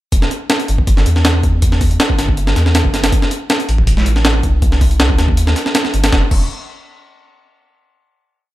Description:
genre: drum and bass, jungle.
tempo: 160 BPM.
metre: 4/4.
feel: straight.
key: E minor.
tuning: A4 = 440 Hz.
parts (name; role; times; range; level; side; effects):
soft dub sub bass; bass; 0.1-6.5 s; E1 to E2; -14 LUFS; equal; none.
jungle sampler-style drum kit; drums; 0.1-6.4 s; crash cymbal, hi-hat, kick drum, snare drum; -14 LUFS; equal; overdrive.
room: little or no reverb.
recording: none.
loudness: -12 LUFS.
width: side -16 dB against mid.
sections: 0.1-6.1 drop; 6.1-7.6 final note.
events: drop 0.1-6.1.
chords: none.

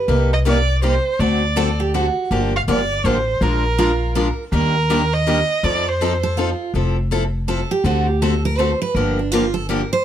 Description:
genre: acoustic string swing (jazz manouche).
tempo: 162 BPM.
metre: 3/4.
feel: swing 63% on 8ths.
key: F major from 6.7 s.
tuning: A4 = 440 Hz.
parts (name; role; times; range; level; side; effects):
picked steel-string acoustic guitar; second line; 0.0-10.0 s; D4 to C5; -22 LUFS; right 4 dB; none.
picked steel-string acoustic guitar; accompaniment; 0.1-9.8 s; C3 to Bb4; -21 LUFS; left 2 dB; none.
upright bass; bass; 0.1-9.8 s; F1 to F2; -20 LUFS; equal; none.
rich violin; melody; 0.3-6.2 s; Bb4 to F5; -21 LUFS; right 3 dB; none.
room: light reverb.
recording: close, detailed microphones.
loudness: -16 LUFS.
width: side -10 dB against mid.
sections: 0.0-6.7 A section; 6.7-10.0 B section.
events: steel-string acoustic guitar solo 6.7-10.0.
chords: 0.1 Cm7; 1.2 D7; 2.3 Gm7; 3.4 Bb7; 4.5 Ebmaj7; 5.6 F7; 6.7 Fmaj7; 7.8 D7; 9.0 Gm7.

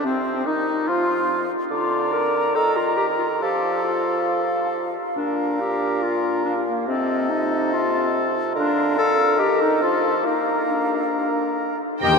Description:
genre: quick classical-period movement for symphony orchestra.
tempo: 133-146 BPM.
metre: 4/4.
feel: rubato.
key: Bb major.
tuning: A4 = 440 Hz.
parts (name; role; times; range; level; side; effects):
concert flute; second line; 0.0-12.1 s; C4 to Bb6; -27 LUFS; right 2 dB; none.
warm clarinet; second line; 0.0-12.1 s; Bb3 to Bb4; -23 LUFS; left 3 dB; none.
warm oboe; second line; 0.0-12.1 s; C4 to Eb5; -26 LUFS; left 3 dB; none.
warm bassoon; accompaniment; 0.0-12.1 s; Bb2 to Bb3; -26 LUFS; right 3 dB; none.
rich chamber violin section; melody; 12.0-12.2 s; G5; -21 LUFS; left 2 dB; none.
rich symphonic violin section; second line; 12.0-12.2 s; C5; -40 LUFS; right 1 dB; none.
rich chamber viola section; accompaniment; 12.0-12.2 s; none; barely audible; none; none.
mellow French horn section; sustained chords; 12.0-12.2 s; none; barely audible; none; none.
mellow trumpet; stabs; 12.0-12.2 s; G4; -20 LUFS; left 6 dB; none.
rich chamber double bass section; bass; 12.0-12.2 s; Eb2; -28 LUFS; left 2 dB; none.
warm chamber cello section; bass; 12.0-12.2 s; Eb2; -25 LUFS; left 1 dB; none.
room: wet huge ambient reverb, RT60 8.9 s.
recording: in a vast, echoing space.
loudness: -19 LUFS.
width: side -4 dB against mid.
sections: 0.0-12.0 A section.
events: none.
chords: 0.0 N.C.; 1.7 Bb/D; 2.6 Eb5; 3.4 F; 5.2 Bb; 6.9 F7/C; 8.6 Bb/D; 9.4 Eb; 9.8 F7; 10.2 Bb.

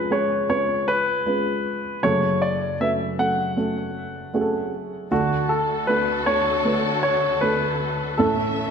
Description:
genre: pop.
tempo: 78 BPM.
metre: 4/4.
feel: straight.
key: unclear.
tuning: A4 = 440 Hz.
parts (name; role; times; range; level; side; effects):
clear grand piano; melody; 0.0-8.7 s; F#4 to F#5; -23 LUFS; left 1 dB; none.
dark upright piano; accompaniment; 0.0-8.7 s; F#1 to B4; -24 LUFS; right 2 dB; none.
warm studio string section; sustained chords; 5.1-8.7 s; D2 to E5; -26 LUFS; left 2 dB; none.
room: wet scoring stage reverb, RT60 1.6 s.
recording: none.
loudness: -20 LUFS.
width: side -6 dB against mid.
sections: 0.0-8.7 A section.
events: none.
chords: 0.0 C#; 2.0 F#m; 5.1 D; 8.2 A.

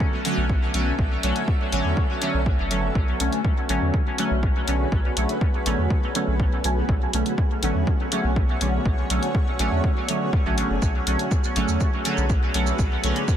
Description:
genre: dub techno.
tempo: 122 BPM.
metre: 4/4.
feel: straight.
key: B dorian.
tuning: A4 = 441 Hz.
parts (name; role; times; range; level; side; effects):
granular cloud pad; sustained chords; 0.0-13.4 s; B3 to E5; -31 LUFS; equal; built-in reverb, sidechain pumping.
resonant sweep polysynth; stabs; 0.0-13.2 s; D3 to C#4; -25 LUFS; right 1 dB; chorus, phaser, sidechain pumping, dub echo.
electronic kick drum; drums; 0.0-13.4 s; none; -23 LUFS; equal; none.
electronic hi-hat and shaker; drums; 0.2-13.4 s; none; -30 LUFS; left 2 dB; none.
pure sine sub bass; bass; 0.4-13.1 s; F#1 to E2; -25 LUFS; equal; sidechain pumping.
room: light reverb, digital ambience.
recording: dense, heavily limited modern master.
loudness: -20 LUFS.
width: side -10 dB against mid.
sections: 0.0-13.4 A section.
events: none.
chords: 0.0 Bm7.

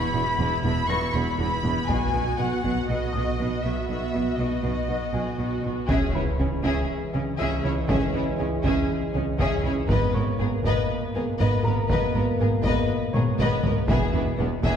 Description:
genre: cinematic, hybrid orchestral and electronic film score.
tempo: 120 BPM.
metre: 4/4.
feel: straight.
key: C# dorian.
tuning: A4 = 437 Hz.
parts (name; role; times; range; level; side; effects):
warm symphonic violin section; melody; 0.0-14.8 s; G#4 to C#6; -31 LUFS; left 2 dB; none.
clear symphonic viola section; accompaniment; 0.0-14.8 s; B3 to F#4; -31 LUFS; right 2 dB; none.
clear symphonic cello section; bass; 0.1-14.7 s; E2 to C#3; -29 LUFS; right 1 dB; none.
clear symphonic double bass section; bass; 0.1-14.7 s; E1 to C#2; -28 LUFS; right 1 dB; none.
clear grand piano; texture; 0.9-14.8 s; A#4 to A#6; -38 LUFS; left 1 dB; digital delay.
solo taiko drums; drums; 1.9-2.9, 5.9-14.8 s; none; -28 LUFS; left 1 dB; none.
rich symphonic violin section; second line; 5.9-14.8 s; B3 to B4; -31 LUFS; left 3 dB; none.
warm trombone section; sustained chords; 5.9-14.8 s; B2 to A#3; -30 LUFS; right 1 dB; none.
impact; sound effects; 5.9-7.9 s; none; -31 LUFS; equal; none.
room: wet scoring stage reverb, RT60 1.7 s.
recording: heard from further back in the room.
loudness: -22 LUFS.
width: side -8 dB against mid.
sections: 0.0-5.9 A section; 5.9-14.8 B section.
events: impact 5.9-7.9; drum fill 13.1-13.9.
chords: 0.0 E5; 1.9 B; 5.9 C#m; 9.9 G#madd9; 13.9 E.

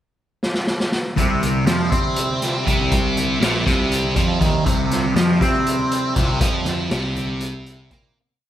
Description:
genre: psychedelic rock.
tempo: 240 BPM (eighths).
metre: 7/8.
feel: straight.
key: C mixolydian.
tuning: A4 = 440 Hz.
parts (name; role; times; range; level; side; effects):
raw garage drum kit; drums; 0.4-8.0 s; hi-hat, kick drum, snare drum; -22 LUFS; equal; none.
hand-pumped harmonium; sustained chords; 1.2-8.1 s; G3 to E4; -30 LUFS; right 6 dB; none.
thick fuzz guitar; riff; 1.2-8.2 s; Bb2 to C4; -20 LUFS; equal; distortion, phaser.
fuzz picked electric bass; bass; 1.2-8.1 s; Bb1 to C3; -25 LUFS; equal; overdrive.
congas; percussion; 1.2-8.2 s; none; -33 LUFS; left 1 dB; none.
room: light reverb.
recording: none.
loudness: -17 LUFS.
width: side -11 dB against mid.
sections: 0.0-1.2 pickup bar; 1.2-8.2 groove.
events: drum fill 0.4-1.2; fade-out 6.4-8.2.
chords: 0.0 N.C.; 1.2 C.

